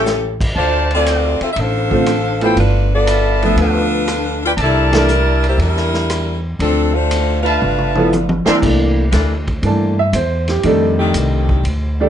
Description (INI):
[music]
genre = jazz, big band swing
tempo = 119 BPM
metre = 4/4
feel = swing 69% on 8ths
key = unclear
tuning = A4 = 440 Hz
[part]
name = warm saxophone section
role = melody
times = 0.0-8.4 s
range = F3 to G5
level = -17 LUFS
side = left 1 dB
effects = none
[part]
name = upright bass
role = bass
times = 0.0-12.1 s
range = G1 to G2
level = -18 LUFS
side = equal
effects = none
[part]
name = vintage drum kit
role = drums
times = 0.1-11.8 s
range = crash cymbal, hi-hat, kick drum, ride cymbal, rim click, snare drum, toms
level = -24 LUFS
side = equal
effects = none
[part]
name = clear trumpet section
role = stabs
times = 0.6-8.6 s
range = C4 to C6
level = -20 LUFS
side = right 1 dB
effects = none
[part]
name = bright upright piano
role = accompaniment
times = 1.9-12.1 s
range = C2 to A5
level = -16 LUFS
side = right 1 dB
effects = none
[part]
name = clear saxophone section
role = sustained chords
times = 9.1-11.6 s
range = Eb3 to A4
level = -22 LUFS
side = left 4 dB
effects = none
[sound]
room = moderate club reverb, RT60 0.7 s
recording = nothing above 10.5 kHz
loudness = -13 LUFS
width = side -9 dB against mid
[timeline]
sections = 0.0-8.6 A section; 8.6-12.1 B section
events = band accent 4.8; drum fill 7.6-8.6; upright piano solo 8.6-12.1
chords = 0.0 A7; 0.6 Dm7; 2.6 G13; 4.6 C13; 6.6 Dm7; 7.6 G13; 8.6 C13; 10.6 F13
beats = 0.06 | 0.56 1.06 1.57 2.07 | 2.57 3.08 3.58 4.08 | 4.59 5.09 5.60 6.10 | 6.60 7.11 7.61 8.12 | 8.62 9.13 9.63 10.14 | 10.64 11.14 11.65